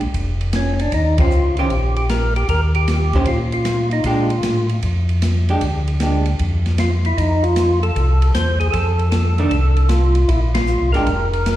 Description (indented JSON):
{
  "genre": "soul jazz organ trio",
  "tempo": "154 BPM",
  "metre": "4/4",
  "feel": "swing 67% on 8ths",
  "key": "unclear",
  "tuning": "A4 = 440 Hz",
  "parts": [
    { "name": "mellow tonewheel organ", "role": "bass", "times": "0.0-11.6 s", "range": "F1 to Bb2", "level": "-17 LUFS", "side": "equal", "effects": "slow rotary speaker" },
    { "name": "open jazz drum kit", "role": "drums", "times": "0.0-11.6 s", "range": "hi-hat, kick drum, ride cymbal, snare drum", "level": "-24 LUFS", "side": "equal", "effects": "none" },
    { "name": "percussive tonewheel organ", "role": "melody", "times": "0.6-11.6 s", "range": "Db4 to C5", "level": "-21 LUFS", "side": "equal", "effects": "slow rotary speaker, overdrive, slapback echo" },
    { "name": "archtop guitar, miked and amplified", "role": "accompaniment", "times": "1.2-6.2, 9.4-11.1 s", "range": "Eb3 to C5", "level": "-22 LUFS", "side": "right 2 dB", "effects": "slapback echo" }
  ],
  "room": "light reverb",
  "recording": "live gig heard through the venue's PA, recital hall reverb",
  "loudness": "-15 LUFS",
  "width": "side -13 dB against mid",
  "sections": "0.0-11.6 A section",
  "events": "band accent 1.1, 10.5",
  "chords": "0.0 Bb (rootless); 0.9 Eb9; 4.0 Bb6; 7.2 F; 10.3 Bb7sus2"
}